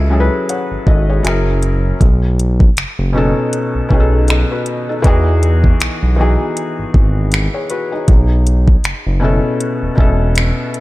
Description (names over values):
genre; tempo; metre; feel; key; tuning
contemporary R&B; 79 BPM; 4/4; swing 58% on 16ths; unclear; A4 = 436 Hz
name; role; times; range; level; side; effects
felt-muted upright piano; accompaniment; 0.0-10.8 s; B2 to F#5; -18 LUFS; left 2 dB; none
smooth synth bass; bass; 0.0-10.5 s; E1 to E2; -14 LUFS; equal; none
smooth R&B drum kit; drums; 0.5-10.8 s; finger snaps, hi-hat, kick drum; -14 LUFS; equal; none
room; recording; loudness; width
little or no reverb; dark, warm production; -12 LUFS; side -18 dB against mid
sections
0.0-10.8 A section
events
none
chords
0.0 F#m9; 1.2 F#7; 2.0 B7; 5.0 Emaj9; 8.1 B7sus4